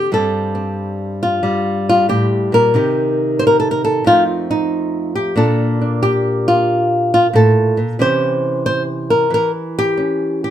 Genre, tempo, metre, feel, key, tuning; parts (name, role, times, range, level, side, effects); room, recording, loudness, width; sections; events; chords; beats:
solo jazz; 91 BPM; 4/4; swing 67% on 8ths; A4 = 440 Hz
flamenco guitar; solo; 0.0-10.5 s; F2 to C5; -14 LUFS; equal
light reverb; minimal, uncompressed stereo recording; -14 LUFS; side -11 dB against mid
0.0-10.5 A section
0.1 Gm11; 2.7 Cm7; 4.1 F7; 5.4 Bbmaj7; 8.0 C
| 0.11 0.77 1.43 2.08 | 2.74 3.40 4.05 4.71 | 5.37 6.02 6.68 7.33 | 7.99 8.65 9.30 9.96